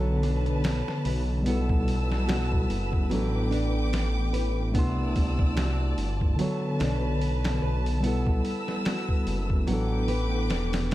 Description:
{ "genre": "trip hop", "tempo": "73 BPM", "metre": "4/4", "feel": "swing 56% on 16ths", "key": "B minor", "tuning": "A4 = 440 Hz", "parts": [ { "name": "mellow tine electric piano", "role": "accompaniment", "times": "0.0-10.9 s", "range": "D3 to C6", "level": "-30 LUFS", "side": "left 1 dB", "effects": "harmonic tremolo, vintage 12-bit sampler grit, tape echo" }, { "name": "rich studio violin section", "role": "sustained chords", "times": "0.0-10.9 s", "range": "B4 to E6", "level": "-36 LUFS", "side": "equal", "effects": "none" }, { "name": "nylon-string guitar", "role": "arpeggios", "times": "0.0-10.9 s", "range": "F#3 to B4", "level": "-34 LUFS", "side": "right 1 dB", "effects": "tape echo" }, { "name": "dark detuned saw bass", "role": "bass", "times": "0.0-10.9 s", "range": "E1 to C2", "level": "-27 LUFS", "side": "equal", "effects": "none" }, { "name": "trip hop sampler-style drum kit", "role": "drums", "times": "0.2-10.9 s", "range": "hi-hat, kick drum, snare drum", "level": "-29 LUFS", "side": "equal", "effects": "studio reverb" } ], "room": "digital ambience", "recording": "dark, warm production", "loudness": "-24 LUFS", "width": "side -15 dB against mid", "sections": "0.0-10.9 A section", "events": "none", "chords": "0.0 Bm9; 1.5 G69/B; 3.1 A9sus4; 4.8 C69; 6.4 Bm9; 8.0 G69/B; 9.7 A9sus4", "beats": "0.64 | 1.46 2.29 3.11 3.93 | 4.75 5.57 6.39 7.22 | 8.04 8.86 9.68 10.50" }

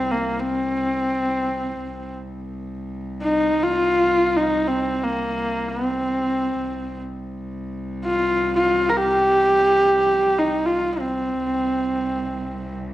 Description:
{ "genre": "mongolian traditional, Mongolian folk", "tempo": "free time", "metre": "none", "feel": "none", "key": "C yu mode", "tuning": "A4 = 440 Hz", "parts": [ { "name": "rich horsehead fiddle", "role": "melody", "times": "0.0-12.8 s", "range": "Bb3 to Bb4", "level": "-19 LUFS", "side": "equal", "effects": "none" }, { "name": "warm cello", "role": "drone", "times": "0.0-12.9 s", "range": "C2", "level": "-31 LUFS", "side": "equal", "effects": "none" } ], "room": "moderate recital hall reverb, RT60 1.3 s", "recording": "worn, warbling old tape, cassette tape, warbly pitch drift", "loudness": "-19 LUFS", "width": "side -14 dB against mid", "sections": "0.0-12.9 A section", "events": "none", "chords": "none", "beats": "free time" }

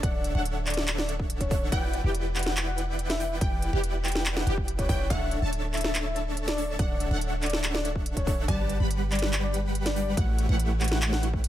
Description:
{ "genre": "future bass", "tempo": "142 BPM", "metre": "4/4", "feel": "half-time", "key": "D major", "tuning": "A4 = 441 Hz", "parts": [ { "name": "soft octave-layered synth lead", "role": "melody", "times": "0.0-11.3 s", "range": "C#5 to G5", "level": "-35 LUFS", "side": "left 3 dB", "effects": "chorus, tremolo, sidechain pumping, dub echo" }, { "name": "wide unison pluck", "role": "arpeggios", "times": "0.0-11.5 s", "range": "G4 to B5", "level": "-37 LUFS", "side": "equal", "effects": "sidechain pumping" }, { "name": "dense compressed supersaw", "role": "riff", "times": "0.0-11.5 s", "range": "G3 to B5", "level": "-32 LUFS", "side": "equal", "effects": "sidechain pumping" }, { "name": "warm 808-style bass", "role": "bass", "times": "0.0-11.5 s", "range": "D1 to A1", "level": "-29 LUFS", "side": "equal", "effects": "sidechain pumping" }, { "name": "electronic kick drum", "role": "drums", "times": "0.0-11.4 s", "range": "none", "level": "-28 LUFS", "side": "equal", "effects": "overdrive" }, { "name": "trap drum kit", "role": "drums", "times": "0.0-11.5 s", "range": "handclaps, hi-hat, snare drum", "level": "-30 LUFS", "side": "equal", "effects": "overdrive" } ], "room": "digital ambience", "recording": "none", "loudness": "-25 LUFS", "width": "side -12 dB against mid", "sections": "0.0-11.5 A section", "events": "none", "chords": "0.0 Dmaj9; 1.7 Em9; 5.1 Dmaj9; 8.5 Gmaj9; 10.2 A13", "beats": "| 0.03 0.45 0.88 1.30 | 1.72 2.15 2.57 2.99 | 3.41 3.83 4.26 4.68 | 5.10 5.53 5.95 6.37 | 6.79 7.21 7.64 8.06 | 8.48 8.90 9.33 9.75 | 10.17 10.60 11.02 11.44" }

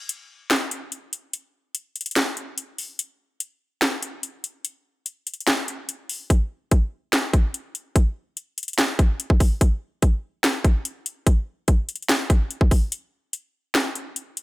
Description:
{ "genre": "hip hop", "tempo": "145 BPM", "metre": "4/4", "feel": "half-time", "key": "none", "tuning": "none", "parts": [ { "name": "trap drum kit", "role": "drums", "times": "0.1-14.4 s", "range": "handclaps, hi-hat, kick drum, snare drum", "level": "-20 LUFS", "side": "equal", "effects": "none" } ], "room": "little or no reverb", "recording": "none", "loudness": "-21 LUFS", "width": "side -19 dB against mid", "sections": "0.0-14.4 A section", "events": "break 0.0-6.3, 12.9-14.4", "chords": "none", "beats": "0.09 0.51 0.92 | 1.33 1.75 2.16 2.58 | 2.99 3.40 3.82 4.23 | 4.64 5.06 5.47 5.89 | 6.30 6.71 7.13 7.54 | 7.96 8.37 8.78 9.20 | 9.61 10.03 10.44 10.85 | 11.27 11.68 12.09 12.51 | 12.92 13.34 13.75 14.16" }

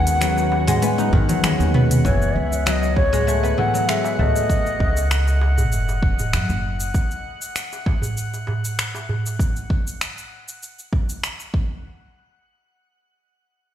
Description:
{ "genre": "organic downtempo", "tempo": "98 BPM", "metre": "4/4", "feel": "straight", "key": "F# dorian", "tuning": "A4 = 440 Hz", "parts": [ { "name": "bright bansuri", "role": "melody", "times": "0.0-5.4 s", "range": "C#5 to F#5", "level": "-25 LUFS", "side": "left 2 dB", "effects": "tape echo, shimmer reverb" }, { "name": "warbly tape-like pad", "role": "sustained chords", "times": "0.0-2.0 s", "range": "G#3 to B4", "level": "-31 LUFS", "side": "equal", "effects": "chorus, built-in reverb, sidechain pumping, shimmer reverb" }, { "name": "guzheng", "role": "arpeggios", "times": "0.0-7.5 s", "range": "D#3 to D#4", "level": "-24 LUFS", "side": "left 3 dB", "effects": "low-pass filter, digital delay, shimmer reverb" }, { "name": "upright bass", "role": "bass", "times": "0.0-6.9 s", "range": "E1 to G#2", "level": "-21 LUFS", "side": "equal", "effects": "tube saturation, sidechain pumping" }, { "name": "drifting glass-harmonics texture", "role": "texture", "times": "0.0-9.4 s", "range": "F#5", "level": "-32 LUFS", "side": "equal", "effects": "chorus, built-in reverb, shimmer reverb" }, { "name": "organic electronic drum kit", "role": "drums", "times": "0.1-11.5 s", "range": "cabasa, finger snaps, hi-hat, toms", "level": "-24 LUFS", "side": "equal", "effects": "none" }, { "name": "darbuka", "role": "percussion", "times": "0.4-9.4 s", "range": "none", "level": "-27 LUFS", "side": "right 2 dB", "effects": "none" }, { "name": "electronic kick drum", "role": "drums", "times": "1.1-11.7 s", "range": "none", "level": "-20 LUFS", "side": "equal", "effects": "overdrive" } ], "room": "light reverb, small room ambience", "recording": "played on a big sound system in a bare room, stone room reverb", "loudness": "-18 LUFS", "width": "side -10 dB against mid", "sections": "0.0-2.0 A section; 2.0-11.8 B section; 11.8-13.7 C section", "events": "drum fill 0.8-2.0", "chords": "0.0 G#m7; 2.0 F#m11; 6.9 N.C.", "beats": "0.21 0.82 1.43 | 2.05 2.66 3.27 3.88 | 4.50 5.11 5.72 6.33 | 6.94 7.56 8.17 8.78 | 9.39 10.01 10.62 11.23" }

